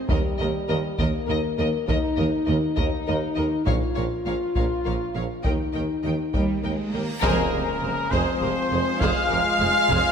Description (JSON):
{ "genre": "cinematic, epic orchestral film score", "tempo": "67 BPM (dotted quarters)", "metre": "12/8", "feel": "straight", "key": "Eb mixolydian", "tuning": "A4 = 441 Hz", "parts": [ { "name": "rich symphonic violin section", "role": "melody", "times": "0.1-10.1 s", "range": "Bb4 to G5", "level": "-32 LUFS", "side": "left 4 dB", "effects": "none" }, { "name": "clear studio violin section", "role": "second line", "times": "0.1-10.1 s", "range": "Bb4 to F5", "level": "-34 LUFS", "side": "left 5 dB", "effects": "none" }, { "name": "clear symphonic viola section", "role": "accompaniment", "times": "0.1-10.1 s", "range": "G4 to C5", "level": "-33 LUFS", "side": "equal", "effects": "none" }, { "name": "dark French horn section", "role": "sustained chords", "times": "0.1-10.1 s", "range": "G3 to F4", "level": "-28 LUFS", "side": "left 3 dB", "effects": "none" }, { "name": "clear tuba", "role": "bass", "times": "0.1-10.0 s", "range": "F1 to Eb2", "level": "-31 LUFS", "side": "right 3 dB", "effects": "none" }, { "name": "rich symphonic cello section", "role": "bass", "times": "0.1-10.0 s", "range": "Eb2 to Bb3", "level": "-31 LUFS", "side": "right 3 dB", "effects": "none" }, { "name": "rich symphonic double bass section", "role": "bass", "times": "0.1-10.0 s", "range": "F1 to Eb2", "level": "-31 LUFS", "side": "right 3 dB", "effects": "none" }, { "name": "solo taiko drums", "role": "drums", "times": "0.1-10.1 s", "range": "none", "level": "-28 LUFS", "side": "equal", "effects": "none" }, { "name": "reverse cymbal and impact", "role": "sound effects", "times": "6.7-10.1 s", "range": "none", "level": "-40 LUFS", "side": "equal", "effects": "none" }, { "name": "silver concert flute", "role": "second line", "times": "7.2-10.1 s", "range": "Bb5 to F6", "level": "-28 LUFS", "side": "left 3 dB", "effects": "none" }, { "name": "bright trombone section", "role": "sustained chords", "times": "7.2-10.1 s", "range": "Db3 to Ab3", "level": "-30 LUFS", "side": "right 4 dB", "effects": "none" }, { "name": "clear symphonic string section", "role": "sustained chords", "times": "7.2-10.1 s", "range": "Ab3 to Ab5", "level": "-34 LUFS", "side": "left 2 dB", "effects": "none" }, { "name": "bright trumpet", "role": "stabs", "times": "7.2-10.1 s", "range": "Bb4 to F5", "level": "-28 LUFS", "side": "right 2 dB", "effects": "none" } ], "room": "wet scoring stage reverb, RT60 1.7 s", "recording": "none", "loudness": "-21 LUFS", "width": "side -7 dB against mid", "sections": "0.0-7.2 A section; 7.2-10.1 A section", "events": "reverse cymbal 6.7-7.2; band accent 7.2-7.8; impact 7.2-10.1", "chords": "0.1 Eb; 3.7 Bbm; 5.4 Eb; 7.2 Fm" }